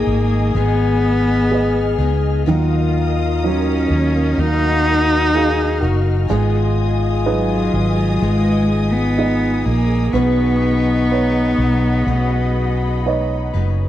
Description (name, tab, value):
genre	pop ballad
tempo	62 BPM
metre	4/4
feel	straight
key	unclear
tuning	A4 = 440 Hz
part	dark cello	melody	0.0-13.5 s	Gb3 to Eb4	-19 LUFS	equal	slapback echo
part	mellow French horn section	second line	0.0-13.9 s	D#4 to Ab4	-24 LUFS	left 9 dB	none
part	dark upright piano	accompaniment	0.0-13.9 s	Eb3 to F5	-24 LUFS	right 6 dB	none
part	warm studio string section	sustained chords	0.0-13.9 s	Ab4 to F6	-28 LUFS	equal	none
part	picked steel-string acoustic guitar	arpeggios	0.0-13.9 s	Ab2 to B4	-29 LUFS	left 10 dB	none
part	fretless electric bass	bass	0.0-13.9 s	Gb1 to Eb2	-19 LUFS	equal	none
room	little or no reverb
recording	dry, close 1970s-style studio recording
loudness	-14 LUFS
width	side -12 dB against mid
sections	0.0-13.9 A section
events	none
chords	0.0 Abm; 2.5 Ebmadd9; 6.3 Abm; 10.1 Badd9